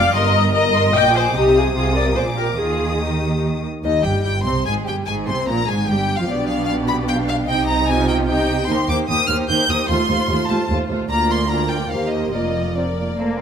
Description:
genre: quick classical-period movement for string orchestra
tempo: 149 BPM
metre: 3/4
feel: rubato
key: Eb major, C minor from 3.8 s, Bb major from 8.7 s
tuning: A4 = 440 Hz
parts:
  - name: rich chamber violin section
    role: melody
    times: 0.0-13.4 s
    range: D5 to G6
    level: -23 LUFS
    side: left 2 dB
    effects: none
  - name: rich studio violin section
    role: second line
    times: 0.0-13.4 s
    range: Eb4 to F5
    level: -25 LUFS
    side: left 3 dB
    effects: none
  - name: rich studio viola section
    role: accompaniment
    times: 0.0-13.4 s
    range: Eb3 to G5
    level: -21 LUFS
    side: right 1 dB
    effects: none
  - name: warm chamber cello section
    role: bass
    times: 0.0-13.4 s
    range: D2 to Bb3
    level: -24 LUFS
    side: right 2 dB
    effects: none
  - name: warm chamber double bass section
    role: bass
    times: 0.0-13.4 s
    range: F1 to Eb2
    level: -25 LUFS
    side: right 2 dB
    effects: none
room: moderate scoring stage reverb, RT60 1.6 s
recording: none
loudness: -16 LUFS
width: side -8 dB against mid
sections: 0.0-3.8 A section; 3.8-13.4 B section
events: none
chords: 0.1 Eb/G; 1.3 Ab/C; 2.2 Bb; 2.6 Eb; 3.8 Cm; 5.1 Abmaj9; 6.3 G7/B; 7.5 Cm; 8.7 Cm7/Eb; 9.9 F7/Eb; 11.1 Bb/D; 11.9 Cm7/Eb; 12.3 Bb/F

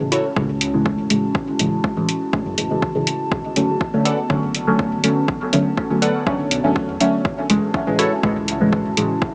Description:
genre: dub techno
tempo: 122 BPM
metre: 4/4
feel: straight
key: B minor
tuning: A4 = 444 Hz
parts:
  - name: dark analog pad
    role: sustained chords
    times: 0.0-9.3 s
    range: D3 to A5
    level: -28 LUFS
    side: equal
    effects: chorus, phaser, sidechain pumping
  - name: deep mellow chord stab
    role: stabs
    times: 0.0-9.2 s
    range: A2 to C#4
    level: -22 LUFS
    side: equal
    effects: chorus, phaser, sidechain pumping, dub echo
  - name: wavetable chord stab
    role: riff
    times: 0.1-0.3, 4.1-8.1 s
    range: E4 to F#5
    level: -27 LUFS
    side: equal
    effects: vintage 12-bit sampler grit, sidechain pumping, dub echo
  - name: electronic hi-hat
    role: drums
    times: 0.1-9.1 s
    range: none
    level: -24 LUFS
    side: equal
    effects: none
  - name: round analog bass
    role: bass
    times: 0.4-9.3 s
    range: E1 to F#2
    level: -35 LUFS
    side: equal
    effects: transformer saturation, sidechain pumping
  - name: electronic kick drum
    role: drums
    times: 0.4-9.3 s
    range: none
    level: -26 LUFS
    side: equal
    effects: none
room: light reverb, digital ambience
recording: dry, gritty hardware recording, cassette tape, small speaker sound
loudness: -20 LUFS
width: mono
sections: 0.0-9.3 A section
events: none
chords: 0.0 F#m7; 3.3 Bm7; 7.2 F#m7

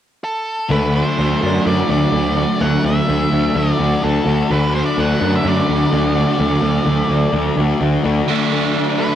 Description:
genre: rock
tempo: 127 BPM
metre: 4/4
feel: straight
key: D major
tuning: A4 = 443 Hz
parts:
  - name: octave-fuzz lead guitar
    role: melody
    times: 0.2-9.2 s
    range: A4 to F#5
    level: -23 LUFS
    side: equal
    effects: distortion, cassette tape
  - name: electric guitar through a small old amp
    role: arpeggios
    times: 0.7-9.2 s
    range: A3 to F#4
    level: -24 LUFS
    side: left 1 dB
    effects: lush chorus, cassette tape, analog delay
  - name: biting overdriven guitar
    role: riff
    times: 0.7-9.2 s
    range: D3 to D4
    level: -22 LUFS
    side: right 8 dB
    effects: reverse reverb, cassette tape
  - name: thick fuzz guitar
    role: riff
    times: 0.7-9.2 s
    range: D3 to D4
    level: -20 LUFS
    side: left 6 dB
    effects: distortion, lush chorus, cassette tape
  - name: fuzz picked electric bass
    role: bass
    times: 0.7-8.2 s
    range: D2 to F#2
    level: -18 LUFS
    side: equal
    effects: overdrive
room: little or no reverb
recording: home recording on cassette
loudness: -14 LUFS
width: side -10 dB against mid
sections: 0.7-8.3 A section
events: none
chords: 0.0 N.C.; 0.7 D

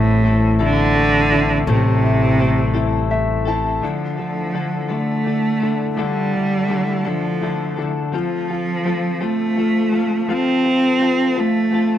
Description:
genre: six-eight pop ballad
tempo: 56 BPM (dotted quarters)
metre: 6/8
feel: straight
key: unclear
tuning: A4 = 440 Hz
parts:
  - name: rich cello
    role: melody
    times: 0.0-12.0 s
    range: A2 to C4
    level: -18 LUFS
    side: right 2 dB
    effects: none
  - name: clear concert grand piano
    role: accompaniment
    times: 0.0-12.0 s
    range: D3 to A5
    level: -23 LUFS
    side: left 5 dB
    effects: none
  - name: direct-recorded clean electric guitar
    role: arpeggios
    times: 0.0-12.0 s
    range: A2 to A4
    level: -28 LUFS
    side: left 7 dB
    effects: ensemble chorus
  - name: upright bass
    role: bass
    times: 0.0-3.8 s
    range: A1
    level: -19 LUFS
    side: left 1 dB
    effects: none
room: light reverb, studio ambience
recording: none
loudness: -16 LUFS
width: side -11 dB against mid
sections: 0.0-3.8 A section; 3.8-12.0 B section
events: grand piano fill 2.8-3.8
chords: 0.0 Am7; 3.8 Dmadd9; 8.1 F

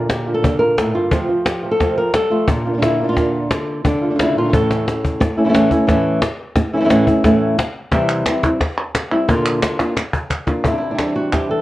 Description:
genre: flamenco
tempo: 176 BPM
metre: 4/4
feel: straight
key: unclear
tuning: A4 = 440 Hz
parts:
  - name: flamenco guitar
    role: melody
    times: 0.0-11.6 s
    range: G2 to Bb4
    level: -16 LUFS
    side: equal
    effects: none
  - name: flamenco guitar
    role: stabs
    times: 0.0-4.9, 10.6-11.6 s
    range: F2 to F4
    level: -22 LUFS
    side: right 2 dB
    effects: none
  - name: cajon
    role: percussion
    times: 0.1-11.5 s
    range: none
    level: -21 LUFS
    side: left 1 dB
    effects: none
  - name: palmas hand claps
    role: percussion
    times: 7.9-11.5 s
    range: none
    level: -23 LUFS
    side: right 1 dB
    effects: none
room: light reverb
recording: worn, warbling old tape, cassette tape, warbly pitch drift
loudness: -15 LUFS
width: side -16 dB against mid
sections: 0.0-5.2 A section; 5.2-10.6 B section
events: drum fill 4.7-5.2, 9.8-10.6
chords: 0.0 Bb; 1.1 F; 2.5 Bb; 3.8 Dm; 4.5 A; 7.9 C; 9.3 Bb; 10.6 Cadd9

